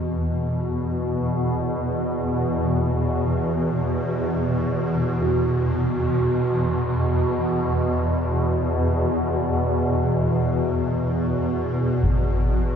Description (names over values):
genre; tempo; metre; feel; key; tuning
dark ambient drone; free time; none; none; unclear; A4 = 441 Hz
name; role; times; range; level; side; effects
swarming drone; drone; 0.0-12.8 s; E2 to B2; -21 LUFS; equal; built-in reverb
quartz singing bowl; texture; 5.2-12.8 s; F#4; -29 LUFS; right 5 dB; stereo widening
concert bass drum; percussion; 12.0-12.3 s; none; -20 LUFS; equal; low-pass filter on kick
room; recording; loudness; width
wet spring reverb, RT60 2.5 s; none; -20 LUFS; side -7 dB against mid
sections
0.0-12.8 A section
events
none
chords
0.0 E5